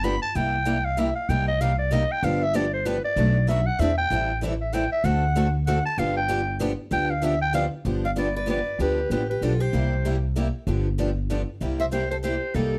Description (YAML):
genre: acoustic string swing (jazz manouche)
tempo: 192 BPM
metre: 3/4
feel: swing 58% on 8ths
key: G mixolydian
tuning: A4 = 440 Hz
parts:
  - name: growling clarinet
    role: melody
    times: 0.0-12.8 s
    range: A4 to B5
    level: -28 LUFS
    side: equal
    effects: none
  - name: picked steel-string acoustic guitar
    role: accompaniment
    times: 0.0-12.8 s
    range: B2 to A4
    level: -32 LUFS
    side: equal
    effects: none
  - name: picked steel-string acoustic guitar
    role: accompaniment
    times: 0.0-12.7 s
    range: B2 to D5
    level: -36 LUFS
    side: equal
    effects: none
  - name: upright bass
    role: bass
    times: 0.0-12.8 s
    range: G1 to E2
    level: -28 LUFS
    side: equal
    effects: none
  - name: picked steel-string acoustic guitar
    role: second line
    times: 8.1-12.8 s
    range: Eb4 to D5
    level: -36 LUFS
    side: equal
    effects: none
room: light reverb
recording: none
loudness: -24 LUFS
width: mono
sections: 0.0-7.9 A section; 7.9-12.8 B section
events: clarinet solo 0.0-7.9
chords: 0.3 C7; 1.3 Cm7; 2.2 G7; 3.2 Bm7; 3.8 E7alt; 4.1 Am7; 5.0 D7; 6.0 G7; 9.7 C7; 10.7 G7; 11.6 C7